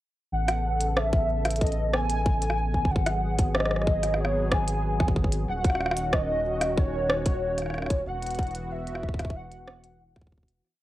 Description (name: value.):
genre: IDM.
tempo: 93 BPM.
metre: 4/4.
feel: straight.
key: A lydian.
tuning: A4 = 440 Hz.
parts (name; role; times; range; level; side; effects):
warbly nostalgic lead; melody; 0.3-10.3 s; C#5 to G#5; -29 LUFS; equal; ensemble chorus, cassette tape, tape echo.
warm analog pad; sustained chords; 0.3-10.6 s; C#3 to A4; -34 LUFS; equal; chorus, vintage 12-bit sampler grit, cassette tape.
round analog bass; bass; 0.3-10.6 s; D#1 to A1; -30 LUFS; equal; none.
glitchy drum kit; drums; 0.5-10.6 s; hi-hat, rim click; -28 LUFS; equal; studio ambience.
electronic kick drum; drums; 1.1-10.5 s; none; -25 LUFS; equal; studio ambience.
room: light reverb.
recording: home recording on cassette.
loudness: -24 LUFS.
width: side -15 dB against mid.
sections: 0.3-10.6 groove.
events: fade-out 7.2-10.6.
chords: 0.3 Aadd9; 2.9 G#m7; 5.5 D#m7; 8.1 Esus2.